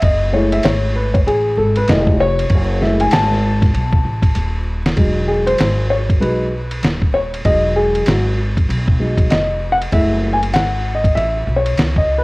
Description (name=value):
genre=hip hop, jazz-hop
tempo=97 BPM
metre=4/4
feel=swing 60% on 16ths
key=E major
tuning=A4 = 438 Hz
part: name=dark upright piano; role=accompaniment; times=0.0-12.2 s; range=F#3 to A5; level=-17 LUFS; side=left 1 dB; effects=none
part: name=upright bass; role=bass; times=0.0-12.2 s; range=D#1 to C#2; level=-19 LUFS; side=equal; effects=none
part: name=dusty soul sampler-style drum kit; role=drums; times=0.0-12.1 s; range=hi-hat, kick drum, ride cymbal, snare drum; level=-18 LUFS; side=equal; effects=none
room=small room ambience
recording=worn, warbling old tape, cassette tape, vinyl crackle, warbly pitch drift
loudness=-13 LUFS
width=side -23 dB against mid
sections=0.0-5.0 A section; 5.0-12.2 A section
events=upright piano solo 0.0-5.0, 5.0-12.2; drum fill 4.4-5.0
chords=0.0 F#m9; 5.0 Emaj9; 9.9 F#m9